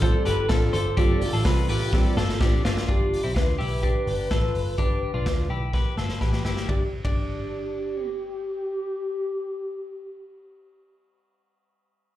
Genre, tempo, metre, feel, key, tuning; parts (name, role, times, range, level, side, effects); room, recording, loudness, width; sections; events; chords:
jangly indie pop; 126 BPM; 4/4; straight; G mixolydian; A4 = 438 Hz
warbly nostalgic lead; melody; 0.0-10.9 s; G4 to B4; -29 LUFS; equal; chorus, slapback echo
fingerpicked steel-string acoustic guitar; accompaniment; 0.0-2.9 s; G3 to D5; -29 LUFS; right 5 dB; slapback echo
hollow soft pad; sustained chords; 0.0-2.8 s; A3 to F4; -39 LUFS; equal
twelve-string electric guitar; arpeggios; 0.0-8.1 s; C4 to C5; -31 LUFS; left 4 dB; slapback echo
vintage muted picked electric bass; bass; 0.0-10.9 s; G1 to D2; -27 LUFS; equal
raw garage drum kit; drums; 0.0-7.2 s; hi-hat, kick drum, ride cymbal, snare drum; -25 LUFS; equal
light reverb; live gig heard through the venue's PA, club reverb; -22 LUFS; side -13 dB against mid
0.0-2.9 A section; 2.9-6.7 B section; 6.7-10.5 C section
drum fill 1.9-2.9, 5.7-6.7
0.0 F6/G; 2.9 G7; 6.7 G5